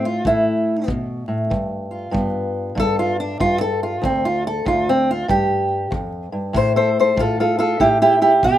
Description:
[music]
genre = acoustic country blues, solo or duo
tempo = 95 BPM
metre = 4/4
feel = swing 65% on 8ths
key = unclear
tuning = A4 = 440 Hz
[part]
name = fingerpicked old ladder-braced acoustic guitar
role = melody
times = 0.0-8.6 s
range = D2 to C5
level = -17 LUFS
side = equal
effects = none
[part]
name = kick drum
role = drums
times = 0.2-8.6 s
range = none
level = -28 LUFS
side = equal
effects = none
[sound]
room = little or no reverb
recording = vinyl crackle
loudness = -17 LUFS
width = side -12 dB against mid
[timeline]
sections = 0.0-8.6 A section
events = steel-string acoustic guitar solo 0.0-8.6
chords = 0.0 A5; 1.5 G7; 4.0 N.C.; 5.3 Fsus2; 6.5 A7(no3)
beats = 0.26 0.89 | 1.52 2.15 2.78 3.41 | 4.04 4.67 5.29 5.92 | 6.55 7.18 7.81 8.44

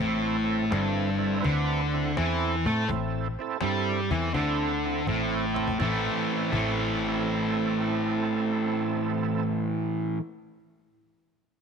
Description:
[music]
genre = blues rock power trio and southern rock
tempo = 83 BPM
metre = 4/4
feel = swing 68% on 8ths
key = A minor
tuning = A4 = 439 Hz
[part]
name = overdriven tonewheel organ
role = sustained chords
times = 0.0-9.4 s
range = C4 to B4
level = -32 LUFS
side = right 9 dB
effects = slow rotary speaker, chorus vibrato
[part]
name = distorted electric guitar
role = riff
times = 0.0-10.2 s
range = G2 to A3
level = -26 LUFS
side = equal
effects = distortion
[part]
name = vintage muted picked electric bass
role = bass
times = 0.0-10.1 s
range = G1 to A2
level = -32 LUFS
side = left 1 dB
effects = none
[part]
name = cajon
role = drums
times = 0.5-6.8 s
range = none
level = -35 LUFS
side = left 5 dB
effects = none
[sound]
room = light reverb, digital ambience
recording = 1960s-style stereo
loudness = -24 LUFS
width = side -6 dB against mid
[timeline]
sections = 0.0-5.8 A section; 5.8-8.7 B section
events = drum fill 5.1-5.8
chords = 0.0 Am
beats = | 0.00 0.72 1.45 2.18 | 2.90 3.63 4.35 5.07 | 5.80 6.52 7.24 7.96

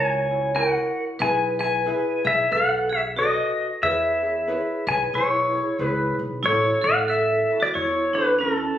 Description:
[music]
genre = Hawaiian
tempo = 92 BPM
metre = 4/4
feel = swing 60% on 8ths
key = E major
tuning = A4 = 439 Hz
[part]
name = pedal steel guitar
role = melody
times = 0.0-8.8 s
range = A4 to G#5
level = -22 LUFS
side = left 2 dB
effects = plate reverb
[part]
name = vibraphone with hard mallets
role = second line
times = 0.0-8.8 s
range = C#4 to C#5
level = -26 LUFS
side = right 2 dB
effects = none
[part]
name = ukulele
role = accompaniment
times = 0.0-8.8 s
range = E4 to E5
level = -29 LUFS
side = left 1 dB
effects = none
[part]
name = upright bass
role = bass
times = 0.0-8.6 s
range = A1 to E2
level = -33 LUFS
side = equal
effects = none
[sound]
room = moderate studio reverb, RT60 0.5 s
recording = recorded on a phone in the room, studio reverb, compression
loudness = -20 LUFS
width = side -11 dB against mid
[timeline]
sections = 0.0-6.4 A section; 6.4-8.8 B section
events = none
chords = 0.0 F#7; 1.2 E/B; 2.5 B7; 3.8 E6; 6.4 A6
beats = 0.55 | 1.20 1.86 2.51 3.17 | 3.82 4.48 5.13 5.79 | 6.44 7.10 7.75 8.41

